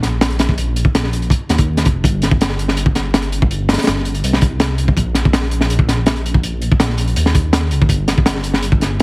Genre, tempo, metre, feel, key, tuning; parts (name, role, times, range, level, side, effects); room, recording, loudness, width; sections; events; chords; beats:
drum and bass, jungle; 164 BPM; 4/4; straight; A4 = 437 Hz
dark detuned saw bass; bass; 0.0-9.0 s; F1 to Eb2; -18 LUFS; equal
crunchy breakbeat drum kit; drums; 0.0-9.0 s; hi-hat, kick drum, snare drum; -14 LUFS; equal
light reverb; heavily compressed radio sound, vinyl crackle; -13 LUFS; side -27 dB against mid
0.0-9.0 A section
0.21 | 0.58 0.94 1.31 1.68 | 2.04 2.41 2.77 3.14 | 3.51 3.87 4.24 4.60 | 4.97 5.33 5.70 6.07 | 6.43 6.80 7.16 7.53 | 7.90 8.26 8.63 8.99